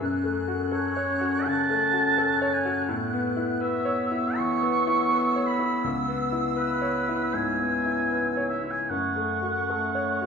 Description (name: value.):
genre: cinematic, emotional film score for orchestra.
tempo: 81 BPM.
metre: 4/4.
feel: uneven beats, rubato.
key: F# minor.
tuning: A4 = 439 Hz.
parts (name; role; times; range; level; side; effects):
flute section; second line; 0.0-10.3 s; C#6 to F#6; -33 LUFS; right 3 dB; none.
warm clarinet; second line; 0.0-10.3 s; A3 to C#4; -31 LUFS; equal; none.
clear grand piano; accompaniment; 0.0-10.3 s; C#2 to C#5; -28 LUFS; left 4 dB; none.
warm oboe; second line; 0.7-10.3 s; B4 to C#6; -26 LUFS; right 3 dB; none.
room: wet scoring stage reverb, RT60 1.8 s.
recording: minimal, uncompressed stereo recording.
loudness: -23 LUFS.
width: side -6 dB against mid.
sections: 0.0-10.3 A section.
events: none.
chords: 0.0 F#m; 2.9 Aadd9; 5.8 C#m7; 8.9 F#m.